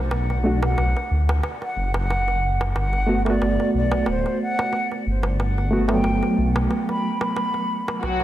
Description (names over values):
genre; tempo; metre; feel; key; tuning
trip hop; 91 BPM; 4/4; swing 56% on 16ths; unclear; A4 = 439 Hz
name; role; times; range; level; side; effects
bright reed electric piano; accompaniment; 0.0-8.0 s; F#3 to F#4; -24 LUFS; right 1 dB; overdrive, fast tremolo, harmonic tremolo, vintage 12-bit sampler grit, tape echo
dark detuned saw bass; bass; 0.0-8.2 s; D1 to D2; -22 LUFS; equal; none
darbuka; percussion; 0.1-8.2 s; none; -30 LUFS; right 1 dB; none
hollow concert flute; melody; 0.6-7.9 s; C5 to B5; -26 LUFS; equal; dub echo
warm studio string section; sustained chords; 8.0-8.2 s; F#3 to F#4; -22 LUFS; left 2 dB; vintage 12-bit sampler grit
room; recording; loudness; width
wet plate reverb, RT60 2.6 s; dreamy mix soaked in reverb; -20 LUFS; side -13 dB against mid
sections
0.0-8.0 A section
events
filter sweep on reed electric piano 0.0-8.0; break 6.7-8.0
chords
0.0 Bm7; 2.8 Gmaj7